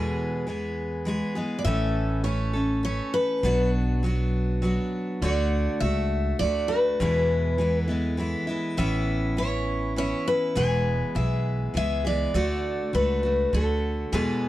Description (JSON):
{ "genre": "honky-tonk and classic country", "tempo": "101 BPM", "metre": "3/4", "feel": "straight", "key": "A major", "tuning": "A4 = 440 Hz", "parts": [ { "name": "picked steel-string acoustic guitar", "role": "melody", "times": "0.0-14.5 s", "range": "G#4 to G#5", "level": "-27 LUFS", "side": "left 1 dB", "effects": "none" }, { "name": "picked steel-string acoustic guitar", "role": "accompaniment", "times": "0.0-14.5 s", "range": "E2 to A4", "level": "-28 LUFS", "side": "equal", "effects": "none" }, { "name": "upright bass", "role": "bass", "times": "0.0-14.5 s", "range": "E1 to E2", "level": "-27 LUFS", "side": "equal", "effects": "none" } ], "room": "light reverb", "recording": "dark, warm production", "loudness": "-23 LUFS", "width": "side -15 dB against mid", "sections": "0.0-1.7 A section; 1.7-14.5 A section", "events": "none", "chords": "0.0 E; 1.7 A; 3.4 Bm; 5.2 D; 7.0 E; 8.8 Aadd9; 10.6 E; 12.3 D" }